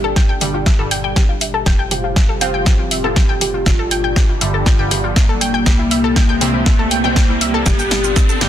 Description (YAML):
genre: melodic techno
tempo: 120 BPM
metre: 4/4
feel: straight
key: G dorian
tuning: A4 = 441 Hz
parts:
  - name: soft octave-layered synth lead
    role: melody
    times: 0.0-8.3 s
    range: Bb3 to G4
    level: -22 LUFS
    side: left 1 dB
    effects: chorus, phaser, sidechain pumping, ping-pong delay
  - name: lush unison pad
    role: sustained chords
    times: 0.0-8.5 s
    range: A2 to G4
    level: -28 LUFS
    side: equal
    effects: chorus, sidechain pumping
  - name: analog pluck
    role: arpeggios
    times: 0.0-8.5 s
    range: E4 to G5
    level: -22 LUFS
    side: left 1 dB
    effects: chorus, sidechain pumping, ping-pong delay
  - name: tight sequencer bass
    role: bass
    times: 0.0-8.5 s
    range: F1 to C2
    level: -26 LUFS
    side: equal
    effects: sidechain pumping
  - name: riser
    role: sound effects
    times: 0.0-8.5 s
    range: none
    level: -27 LUFS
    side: left 1 dB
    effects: none
  - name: electronic kick drum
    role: drums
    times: 0.2-8.3 s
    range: none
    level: -14 LUFS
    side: equal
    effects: none
  - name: house drum kit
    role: drums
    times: 0.2-8.5 s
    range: hi-hat, shaker, snare drum, toms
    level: -20 LUFS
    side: equal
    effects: high-pass filter on perc, high-pass filter on snare, high-pass filter on toms, high-pass filter on hats
  - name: synth brass stab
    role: stabs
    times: 0.4-8.5 s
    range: G2 to F4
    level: -23 LUFS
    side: right 2 dB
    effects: chorus, phaser, cassette tape, sidechain pumping, ping-pong delay
room: moderate recital hall reverb, RT60 1.5 s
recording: dense, heavily limited modern master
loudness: -13 LUFS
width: side -11 dB against mid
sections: 0.0-8.5 A section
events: build-up 0.0-8.5; drum fill 0.0-8.5; riser 0.0-8.5; filter sweep on analog synth pad 0.0-8.5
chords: 0.0 Gm; 1.7 F; 3.7 Gm; 5.7 C; 7.7 Gm